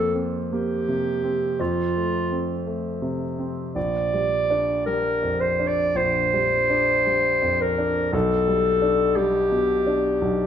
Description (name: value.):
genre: classical, romantic duo for clarinet and grand piano.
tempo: 53-58 BPM.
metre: 4/4.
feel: rubato.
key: unclear.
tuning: A4 = 440 Hz.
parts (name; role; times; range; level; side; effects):
warm clarinet; melody; 0.0-10.5 s; F4 to D5; -21 LUFS; equal; none.
clear concert grand piano; accompaniment; 0.0-10.5 s; Bb1 to D4; -25 LUFS; right 1 dB; none.
room: moderate recital hall reverb, RT60 1.5 s.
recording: none.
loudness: -20 LUFS.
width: side -9 dB against mid.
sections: 0.0-10.5 A section.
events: none.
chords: 0.0 C5/F; 1.6 F; 3.8 Gm7/Bb; 8.1 G/B.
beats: 0.51 1.59 2.66 | 3.76 4.87 5.96 7.07 | 8.14 9.17 10.22.